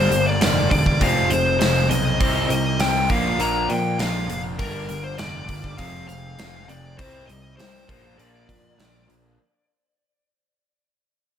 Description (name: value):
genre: hard rock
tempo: 100 BPM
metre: 4/4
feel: straight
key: unclear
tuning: A4 = 443 Hz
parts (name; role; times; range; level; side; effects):
- smooth overdriven lead guitar; melody; 0.0-9.0 s; Bb4 to Bb5; -24 LUFS; left 3 dB; none
- crunchy overdriven guitar; riff; 0.0-9.4 s; F2 to C4; -29 LUFS; left 7 dB; phaser
- crunchy overdriven guitar; riff; 0.0-9.4 s; F2 to C4; -28 LUFS; right 9 dB; none
- raw garage guitar; riff; 0.0-9.4 s; F2 to Eb4; -30 LUFS; left 1 dB; overdrive, spring reverb
- modern bright picked electric bass; bass; 0.0-9.4 s; E1 to Bb2; -27 LUFS; equal; none
- gated 80s drum kit; drums; 0.1-9.2 s; hi-hat, kick drum, snare drum; -25 LUFS; right 1 dB; none
room: moderate studio reverb, RT60 0.7 s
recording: none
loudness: -18 LUFS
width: side -9 dB against mid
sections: 0.0-9.4 A section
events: fade-out 0.0-9.4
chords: 0.0 Gm; 1.0 Fm; 2.2 Cm; 3.1 Bb; 4.6 Gm; 5.8 Fm; 7.0 Cm; 7.9 Bb